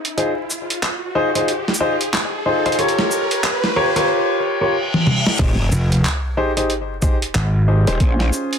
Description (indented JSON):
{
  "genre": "glitch hop",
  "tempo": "92 BPM",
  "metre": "4/4",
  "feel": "swing 61% on 16ths",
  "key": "F minor",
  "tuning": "A4 = 440 Hz",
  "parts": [
    { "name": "boom bap sampler-style drum kit", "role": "drums", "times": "0.0-8.6 s", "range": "crash cymbal, handclaps, hi-hat, shaker, snare drum, toms", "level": "-21 LUFS", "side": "equal", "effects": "overdrive, soft clipping on snare" },
    { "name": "riser, reverse cymbal and sub drop", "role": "sound effects", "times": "0.0-8.0 s", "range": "none", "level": "-24 LUFS", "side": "right 1 dB", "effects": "none" },
    { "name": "warm concert grand piano", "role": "stabs", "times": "0.2-8.6 s", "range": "Db4 to Db5", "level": "-19 LUFS", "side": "left 1 dB", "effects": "sidechain pumping, ping-pong delay" },
    { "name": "growl bass", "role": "bass", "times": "5.4-8.3 s", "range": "Eb1 to Bb1", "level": "-19 LUFS", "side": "equal", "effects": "chorus, tube saturation" },
    { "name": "electronic kick drum", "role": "drums", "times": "5.4-8.2 s", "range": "none", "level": "-17 LUFS", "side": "equal", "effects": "overdrive" },
    { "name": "gritty slap bass", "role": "bass", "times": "5.7-7.8 s", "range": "F1 to Ab1", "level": "-15 LUFS", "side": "equal", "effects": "overdrive" }
  ],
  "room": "moderate studio reverb, RT60 0.6 s",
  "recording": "dense, heavily limited modern master, vinyl crackle",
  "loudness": "-16 LUFS",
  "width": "side -7 dB against mid",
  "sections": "0.0-5.4 A section; 5.4-8.6 B section",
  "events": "build-up 0.0-5.4; riser 0.0-4.1; reverse cymbal 4.1-5.4; drum fill 4.9-5.4; drop 5.4-8.6; impact 5.4-8.0",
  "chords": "0.2 Ab6/Eb; 2.8 Bbm6/F; 5.4 Fm7; 8.0 Bbm7"
}